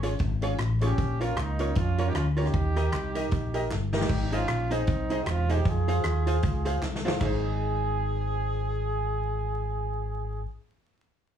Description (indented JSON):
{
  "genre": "ska",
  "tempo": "154 BPM",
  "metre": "4/4",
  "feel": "swing 58% on 8ths",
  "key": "Ab major",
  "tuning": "A4 = 444 Hz",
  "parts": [
    { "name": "archtop guitar, miked and amplified", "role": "accompaniment", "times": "0.0-10.7 s", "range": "Eb4 to Eb5", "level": "-33 LUFS", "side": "right 7 dB", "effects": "none" },
    { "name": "warm upright piano", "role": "stabs", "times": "0.0-10.5 s", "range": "Db4 to F5", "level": "-36 LUFS", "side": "left 7 dB", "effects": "none" },
    { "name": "fingered electric bass", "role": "bass", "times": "0.0-10.4 s", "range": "Fb1 to F2", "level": "-28 LUFS", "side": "equal", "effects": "none" },
    { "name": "swinging big-band drum kit", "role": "drums", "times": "0.0-7.3 s", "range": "crash cymbal, hi-hat, kick drum, rim click, snare drum", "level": "-31 LUFS", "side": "equal", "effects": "none" },
    { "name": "group handclap", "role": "percussion", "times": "0.6-7.4 s", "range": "none", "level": "-41 LUFS", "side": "right 4 dB", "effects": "none" },
    { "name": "warm horn section", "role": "melody", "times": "0.8-10.4 s", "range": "Bb3 to Ab4", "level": "-32 LUFS", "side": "right 3 dB", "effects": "none" }
  ],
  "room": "light reverb",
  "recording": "vinyl crackle, studio ambience",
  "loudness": "-25 LUFS",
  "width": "side -9 dB against mid",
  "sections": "0.0-4.1 A section; 4.1-7.2 B section; 7.2-10.3 C section",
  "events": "drum fill 3.7-4.1, 6.8-7.2",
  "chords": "0.0 Db; 1.0 Bbm; 2.5 Eb; 4.1 Ab; 5.7 Fm; 7.2 Ab",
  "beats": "0.20 0.59 | 0.98 1.37 1.76 2.15 | 2.54 2.93 3.31 3.70 | 4.09 4.48 4.87 5.26 | 5.65 6.04 6.43 6.82 | 7.21 7.60 7.99 8.38 | 8.77 9.16 9.54 9.93"
}